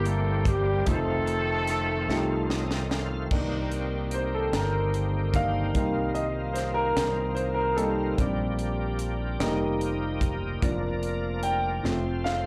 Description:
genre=slow gospel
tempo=49 BPM (dotted quarters)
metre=6/8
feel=straight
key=unclear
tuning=A4 = 440 Hz
part: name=warm horn section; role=melody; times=0.0-2.9 s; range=G3 to A4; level=-30 LUFS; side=equal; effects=slapback echo
part: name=warm grand piano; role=accompaniment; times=0.0-12.5 s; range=C3 to G5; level=-32 LUFS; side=equal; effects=none
part: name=bright tonewheel organ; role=sustained chords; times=0.0-12.5 s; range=Eb3 to F5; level=-36 LUFS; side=equal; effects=slow rotary speaker, overdrive, chorus vibrato
part: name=fingered electric bass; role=bass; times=0.0-12.5 s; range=F1 to C2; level=-32 LUFS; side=equal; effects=none
part: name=crisp fusion drum kit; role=drums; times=0.1-12.4 s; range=crash cymbal, hi-hat, kick drum, snare drum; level=-33 LUFS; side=equal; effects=none
room=light reverb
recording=live gig heard through the venue's PA, club reverb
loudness=-27 LUFS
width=mono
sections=0.0-3.3 A section; 3.3-12.5 B section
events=drum fill 2.1-3.3, 11.8-12.5; tonewheel organ fill 2.1-3.3; grand piano solo 3.3-12.5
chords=0.0 C7; 0.9 F7; 3.3 Cm7; 5.8 F7sus4/C; 8.2 Bb6; 9.4 F9sus4; 10.6 Bb/F; 11.8 F

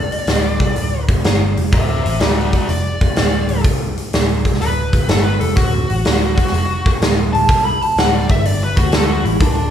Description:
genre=blues rock power trio and southern rock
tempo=125 BPM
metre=4/4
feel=swing 68% on 8ths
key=D major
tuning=A4 = 440 Hz
part: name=smooth overdriven lead guitar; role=melody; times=0.0-9.7 s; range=D4 to B5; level=-20 LUFS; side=left 1 dB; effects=none
part: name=vintage muted picked electric bass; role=bass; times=0.0-9.7 s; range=D1 to D2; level=-19 LUFS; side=equal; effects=none
part: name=big rock drum kit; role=drums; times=0.1-9.6 s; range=hi-hat, kick drum, snare drum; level=-16 LUFS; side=equal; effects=none
room=moderate large studio reverb, RT60 1.4 s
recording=band playing live in one room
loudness=-13 LUFS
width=side -9 dB against mid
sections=0.0-9.7 A section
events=lead electric guitar solo 0.0-9.7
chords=0.0 D

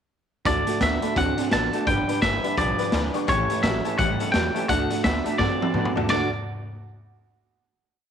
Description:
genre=rockabilly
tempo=170 BPM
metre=4/4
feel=swing 61% on 8ths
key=D major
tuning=A4 = 440 Hz
part: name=twangy electric guitar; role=melody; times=0.5-6.3 s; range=C#5 to A5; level=-25 LUFS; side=equal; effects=tape echo
part: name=honky-tonk upright piano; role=accompaniment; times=0.5-6.3 s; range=C#5 to C#6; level=-34 LUFS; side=left 12 dB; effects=none
part: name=picked steel-string acoustic guitar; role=accompaniment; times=0.5-6.3 s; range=A2 to B4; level=-30 LUFS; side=left 12 dB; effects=none
part: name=electric guitar through a small old amp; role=riff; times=0.5-6.3 s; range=G2 to F#4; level=-28 LUFS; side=right 11 dB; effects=spring reverb
part: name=upright bass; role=bass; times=0.5-6.3 s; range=G1 to A2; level=-30 LUFS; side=equal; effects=none
part: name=raw garage drum kit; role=drums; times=0.5-6.2 s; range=hi-hat, kick drum, ride cymbal, snare drum, toms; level=-27 LUFS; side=left 1 dB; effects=none
room=light reverb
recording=1960s-style stereo with parts hard left and right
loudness=-21 LUFS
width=side -8 dB against mid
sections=0.5-6.1 A section; 6.1-7.5 final chord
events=drum fill 5.4-6.1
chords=0.5 D; 1.9 G; 3.3 A7; 4.7 D

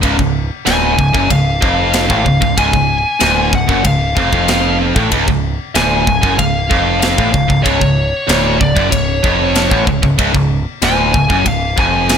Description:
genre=heavy metal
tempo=94 BPM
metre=4/4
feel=straight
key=unclear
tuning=A4 = 440 Hz
part: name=tight distorted guitar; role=riff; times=0.0-12.2 s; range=C#2 to A2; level=-14 LUFS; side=equal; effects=distortion
part: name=growling picked electric bass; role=bass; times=0.0-12.2 s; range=C#1 to A1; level=-19 LUFS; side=equal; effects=overdrive
part: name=tight metal drum kit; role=drums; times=0.0-12.2 s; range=kick drum, ride cymbal, snare drum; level=-17 LUFS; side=equal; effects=none
part: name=high-gain lead guitar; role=melody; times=0.7-12.2 s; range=C#5 to G#5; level=-17 LUFS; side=left 1 dB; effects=distortion, digital delay
room=little or no reverb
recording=none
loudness=-11 LUFS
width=side -7 dB against mid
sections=0.0-12.2 A section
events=none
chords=0.0 C#

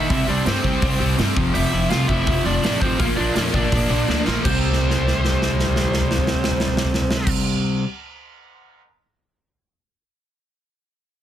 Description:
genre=punk rock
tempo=165 BPM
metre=4/4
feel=straight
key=C mixolydian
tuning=A4 = 440 Hz
part: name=biting lead guitar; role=melody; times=0.0-7.3 s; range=Bb3 to F5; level=-25 LUFS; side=equal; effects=overdrive
part: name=crunchy overdriven guitar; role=riff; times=0.0-7.8 s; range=F2 to C4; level=-24 LUFS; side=equal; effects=none
part: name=distorted electric guitar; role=riff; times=0.0-7.8 s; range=F2 to C4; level=-26 LUFS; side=equal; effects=distortion
part: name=upright bass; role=bass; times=0.0-7.3 s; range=F1 to G2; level=-24 LUFS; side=equal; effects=none
part: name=big rock drum kit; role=drums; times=0.1-8.8 s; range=crash cymbal, hi-hat, kick drum, snare drum, toms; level=-23 LUFS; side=equal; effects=none
room=little or no reverb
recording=dense, heavily limited modern master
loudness=-17 LUFS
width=side -11 dB against mid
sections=0.0-4.5 A section; 4.5-7.4 B section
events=drum fill 4.1-4.5, 4.6-7.3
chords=0.1 C; 1.4 F; 3.0 Bb; 4.5 C5

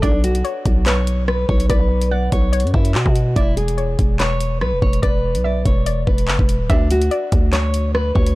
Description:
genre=hip hop, drill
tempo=144 BPM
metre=4/4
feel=half-time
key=unclear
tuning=A4 = 440 Hz
part: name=nylon-string guitar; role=melody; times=0.0-8.3 s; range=D4 to D5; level=-23 LUFS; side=equal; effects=low-pass filter, digital delay
part: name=soft round pluck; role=second line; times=0.0-8.3 s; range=B4 to F#5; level=-27 LUFS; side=left 1 dB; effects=chorus, digital delay
part: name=growling 808-style bass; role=bass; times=0.0-8.4 s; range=D1 to B2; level=-19 LUFS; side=equal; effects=none
part: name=drill drum kit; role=drums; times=0.0-8.4 s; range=handclaps, hi-hat, kick drum, rim click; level=-18 LUFS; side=equal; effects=none
room=little or no reverb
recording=dark, warm production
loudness=-15 LUFS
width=side -19 dB against mid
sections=0.0-8.4 A section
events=none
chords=0.0 Bmadd9; 3.4 E7(no3); 6.7 Dmaj7

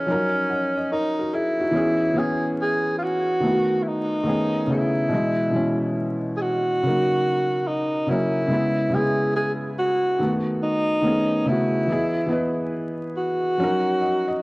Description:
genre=hip hop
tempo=71 BPM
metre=4/4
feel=swing 65% on 16ths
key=C# minor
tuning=A4 = 440 Hz
part: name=mellow tenor saxophone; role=melody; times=0.0-14.4 s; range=C#4 to G#4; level=-23 LUFS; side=equal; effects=analog delay
part: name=felt-muted upright piano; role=accompaniment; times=0.0-14.4 s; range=B2 to F#5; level=-23 LUFS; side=equal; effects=cassette tape
room=moderate plate reverb, RT60 2.9 s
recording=worn, warbling old tape, cassette tape, vinyl crackle, warbly pitch drift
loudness=-20 LUFS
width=side -23 dB against mid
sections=0.0-1.7 A section; 1.7-14.4 B section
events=none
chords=0.1 D#m7; 1.7 C#m7; 3.4 B7; 4.3 B13; 5.1 Emaj7; 6.8 D#m7; 8.5 C#m7; 10.2 B7; 11.0 B13; 11.9 Emaj7; 13.6 D#m7

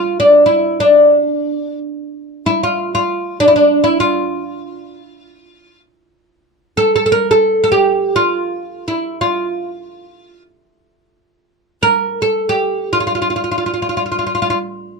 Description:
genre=Turkish makam ensemble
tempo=free time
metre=none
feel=none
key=unclear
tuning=A4 = 440 Hz
part: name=oud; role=solo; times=0.0-14.6 s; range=D4 to Bb4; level=-13 LUFS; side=equal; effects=none
room=light reverb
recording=close, detailed microphones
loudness=-12 LUFS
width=side -4 dB against mid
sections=0.0-15.0 A section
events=none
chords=none

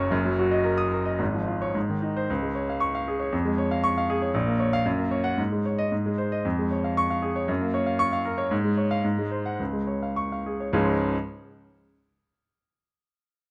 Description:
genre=classical, virtuoso piano study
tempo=103-119 BPM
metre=2/4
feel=rubato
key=Db major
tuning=A4 = 438 Hz
part: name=clear baby grand piano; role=solo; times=0.0-11.2 s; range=Gb1 to Eb6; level=-26 LUFS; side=equal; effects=none
room=moderate large studio reverb, RT60 1.2 s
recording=dark, warm production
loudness=-26 LUFS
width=mono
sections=0.0-2.3 A section; 2.3-10.7 B section; 10.7-11.8 C section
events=slowing down 8.0-10.7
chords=0.1 Ebm/Gb; 1.2 Db/Ab; 1.8 Ab; 2.3 Db; 3.3 Db/F; 4.3 Bbm; 4.9 Gb; 5.4 Absus4; 5.9 Ab; 6.5 Db/F; 7.5 Gbmaj7; 8.5 Db/Ab; 9.0 Ab7; 9.6 Db

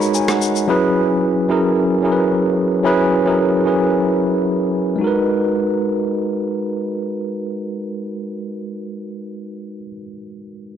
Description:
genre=amapiano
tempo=111 BPM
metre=4/4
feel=straight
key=unclear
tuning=A4 = 436 Hz
part: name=tine electric piano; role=accompaniment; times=0.0-10.8 s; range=F#3 to B5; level=-17 LUFS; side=equal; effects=medium stereo tremolo
part: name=electronic shaker and rim click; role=drums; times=0.0-0.7 s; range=none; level=-23 LUFS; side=left 3 dB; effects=overdrive
room=moderate lush hall reverb, RT60 2.1 s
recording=blown-out, overdriven recording, overdrive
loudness=-16 LUFS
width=side -9 dB against mid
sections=0.0-5.0 A section; 5.0-9.3 B section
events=tine electric piano fill 0.0-0.7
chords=0.0 G#m7; 0.7 F#9sus4; 5.0 G#m7

